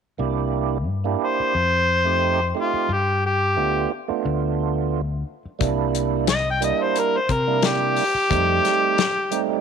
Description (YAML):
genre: straight-eighth soul blues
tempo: 89 BPM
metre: 4/4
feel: swing 54% on 16ths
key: C mixolydian from 5.6 s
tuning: A4 = 440 Hz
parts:
  - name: tonewheel organ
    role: accompaniment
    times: 0.2-9.6 s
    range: G3 to G4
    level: -25 LUFS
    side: right 13 dB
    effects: slow rotary speaker, overdrive, chorus vibrato
  - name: fingered electric bass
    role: bass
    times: 0.2-8.6 s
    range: C2 to C3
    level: -25 LUFS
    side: left 2 dB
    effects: none
  - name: overdriven harmonica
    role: melody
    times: 1.2-9.6 s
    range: F4 to G5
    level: -20 LUFS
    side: left 1 dB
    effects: none
  - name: warm soul drum kit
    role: drums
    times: 5.6-9.5 s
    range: hi-hat, kick drum, snare drum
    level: -25 LUFS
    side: left 8 dB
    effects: none
room: light reverb, small room ambience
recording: 1960s-style stereo with parts hard left and right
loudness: -19 LUFS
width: side -7 dB against mid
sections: 0.2-5.6 A section; 5.6-9.6 B section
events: none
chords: 0.2 C7; 1.5 F7; 2.9 G7; 5.6 C7; 8.3 F7